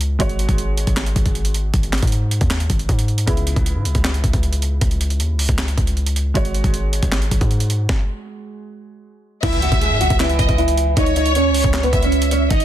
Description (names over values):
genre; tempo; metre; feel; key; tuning
hip hop, trap; 156 BPM; 4/4; half-time; C# minor; A4 = 444 Hz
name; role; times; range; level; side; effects
felt-muted upright piano; accompaniment; 0.0-9.4 s; C#3 to C#5; -29 LUFS; right 2 dB; low-pass filter
hard-hitting 808-style bass; bass; 0.0-12.6 s; G#1 to G#2; -19 LUFS; equal; none
breakbeat sampler-style drum kit; drums; 0.0-12.6 s; crash cymbal, handclaps, hi-hat, kick drum, snare drum; -20 LUFS; equal; soft clipping on snare
nylon-string guitar; melody; 9.4-12.6 s; E3 to D#5; -19 LUFS; right 2 dB; low-pass filter, tape echo
warm studio violin section; second line; 9.4-12.6 s; C#5 to E5; -22 LUFS; equal; tape echo
impact; sound effects; 9.4-11.0 s; none; -28 LUFS; equal; none
room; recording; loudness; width
studio ambience; dense, heavily limited modern master; -16 LUFS; side -12 dB against mid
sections
0.0-9.4 A section; 9.4-12.6 B section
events
stop 7.9-9.4; impact 9.4-11.0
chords
0.2 G#7sus4; 3.3 C#m7; 6.4 G#7sus4; 9.4 C#m